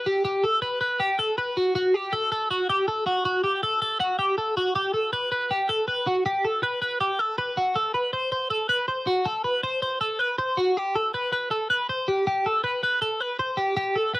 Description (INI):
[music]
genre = indie pop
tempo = 160 BPM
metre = 4/4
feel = straight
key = G major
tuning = A4 = 438 Hz
[part]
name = twelve-string electric guitar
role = solo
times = 0.0-14.2 s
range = F#4 to C5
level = -22 LUFS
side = equal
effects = phaser, cassette tape
[sound]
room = light reverb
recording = home recording on cassette, vinyl crackle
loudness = -22 LUFS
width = side -18 dB against mid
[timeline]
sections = 0.0-4.8 A section; 4.8-14.2 B section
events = none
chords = none